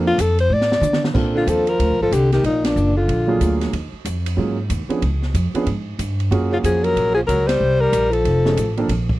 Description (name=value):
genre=jazz, small-group swing and bop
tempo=186 BPM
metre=4/4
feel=swing 62% on 8ths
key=Bb major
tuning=A4 = 440 Hz
part: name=warm grand piano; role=accompaniment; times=0.0-8.9 s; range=F3 to A4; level=-22 LUFS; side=right 4 dB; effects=none
part: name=upright bass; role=bass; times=0.0-9.2 s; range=F1 to D3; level=-20 LUFS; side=equal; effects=none
part: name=warm alto saxophone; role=melody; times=0.1-3.6, 6.5-8.8 s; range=D4 to D5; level=-19 LUFS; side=left 2 dB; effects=none
part: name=open jazz drum kit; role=drums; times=0.2-9.1 s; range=crash cymbal, hi-hat, kick drum, ride cymbal, snare drum, toms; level=-27 LUFS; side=equal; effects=none
part: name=breathy tenor saxophone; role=second line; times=1.3-3.6, 6.5-8.8 s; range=Bb2 to G3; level=-24 LUFS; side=right 3 dB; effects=none
room=little or no reverb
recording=dry, close 1970s-style studio recording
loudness=-16 LUFS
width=side -17 dB against mid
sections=0.0-1.2 A section; 1.2-9.2 B section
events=alto saxophone solo 0.0-1.2; drum fill 0.5-1.2; band accent 2.6, 7.4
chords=0.0 Bbmaj7; 2.4 Bb7b13; 3.7 Ebm11; 5.0 Db; 6.3 Gbmaj7; 7.6 C5; 8.2 F7alt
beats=0.19 0.51 0.83 | 1.15 1.48 1.80 2.12 | 2.44 2.76 3.09 3.41 | 3.73 4.05 4.38 4.70 | 5.02 5.34 5.67 5.99 | 6.31 6.63 6.96 7.28 | 7.60 7.92 8.24 8.57 | 8.89